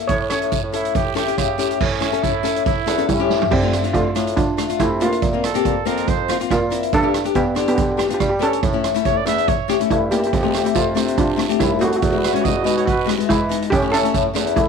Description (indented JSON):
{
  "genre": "calypso",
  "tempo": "141 BPM",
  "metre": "4/4",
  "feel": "swing 53% on 16ths",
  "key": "unclear",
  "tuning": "A4 = 442 Hz",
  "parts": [
    { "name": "steel pan", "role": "melody", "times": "0.0-14.7 s", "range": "G3 to E5", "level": "-21 LUFS", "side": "right 2 dB", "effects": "tape echo" },
    { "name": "nylon-string guitar", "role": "accompaniment", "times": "0.0-14.6 s", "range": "G#3 to A4", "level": "-22 LUFS", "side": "left 12 dB", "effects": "none" },
    { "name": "warm bassoon", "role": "bass", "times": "0.1-14.6 s", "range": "Eb2 to G3", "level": "-25 LUFS", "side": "right 1 dB", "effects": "none" },
    { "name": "street-band drum kit", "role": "drums", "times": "0.1-14.7 s", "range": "crash cymbal, hi-hat, kick drum, rim click, snare drum, toms", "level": "-23 LUFS", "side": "right 4 dB", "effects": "none" },
    { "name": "guiro", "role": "percussion", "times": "0.1-3.2, 10.3-14.7 s", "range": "none", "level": "-32 LUFS", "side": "right 15 dB", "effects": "none" },
    { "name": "warm trumpet", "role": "second line", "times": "0.7-6.4, 9.1-13.2 s", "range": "C#4 to E5", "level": "-25 LUFS", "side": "right 12 dB", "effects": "none" }
  ],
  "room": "light reverb, small room ambience",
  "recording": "1960s-style stereo with parts hard left and right",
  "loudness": "-16 LUFS",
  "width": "side -6 dB against mid",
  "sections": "0.0-1.8 A section; 1.8-3.5 B section; 3.5-14.7 C section",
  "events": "steel pan solo 0.0-1.8; drum fill 3.3",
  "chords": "0.1 A7; 3.5 Dm7; 5.2 Bbsus2; 6.9 Gadd9; 8.6 A; 10.3 Fadd9; 12.0 E; 13.7 A"
}